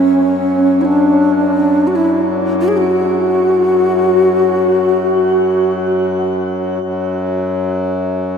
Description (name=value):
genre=world meditative, free-time meditation music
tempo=free time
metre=none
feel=none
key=unclear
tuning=A4 = 440 Hz
part: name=breathy low Native American-style wooden flute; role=melody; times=0.0-6.0 s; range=C#4 to G#4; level=-13 LUFS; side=equal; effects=shimmer reverb, tape echo
part: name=hand-pumped harmonium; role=drone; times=0.0-8.4 s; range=F#2 to F#3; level=-19 LUFS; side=left 2 dB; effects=none
room=wet huge ambient reverb, RT60 8.2 s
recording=dreamy mix soaked in reverb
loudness=-12 LUFS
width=side -6 dB against mid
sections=0.0-8.4 A section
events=none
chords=none